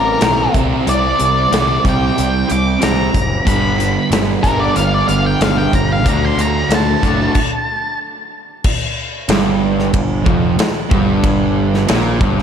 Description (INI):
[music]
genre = classic rock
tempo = 93 BPM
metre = 4/4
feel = straight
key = unclear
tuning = A4 = 439 Hz
[part]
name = octave-fuzz lead guitar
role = melody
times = 0.0-8.0 s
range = Bb4 to D6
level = -18 LUFS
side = left 1 dB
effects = distortion
[part]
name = raw garage guitar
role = riff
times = 0.0-12.4 s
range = F2 to D4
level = -22 LUFS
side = left 8 dB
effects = overdrive, slapback echo
[part]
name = sludgy distorted guitar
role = riff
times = 0.0-12.4 s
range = F2 to E4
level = -19 LUFS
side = right 10 dB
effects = overdrive
[part]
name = fuzz picked electric bass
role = bass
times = 0.0-12.4 s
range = F1 to D2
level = -19 LUFS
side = equal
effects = overdrive
[part]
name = big rock drum kit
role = drums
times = 0.2-12.4 s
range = crash cymbal, hi-hat, kick drum, ride cymbal, snare drum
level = -18 LUFS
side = left 1 dB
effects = none
[part]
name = fuzz guitar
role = riff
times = 9.3-12.4 s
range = F2 to Bb2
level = -21 LUFS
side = equal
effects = distortion
[sound]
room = moderate lush hall reverb, RT60 3.0 s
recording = big arena sound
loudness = -13 LUFS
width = side -8 dB against mid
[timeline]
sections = 0.0-8.6 A section; 8.6-12.4 B section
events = lead electric guitar solo 0.0-8.6; stop 7.4-8.6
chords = 0.0 Am; 0.5 C; 3.5 G; 6.1 D; 8.6 Fsus24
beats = 0.21 | 0.86 1.51 2.16 2.81 | 3.46 4.11 4.76 5.41 | 6.06 6.71 7.35 8.00 | 8.65 9.29 9.94 10.59 | 11.24 11.88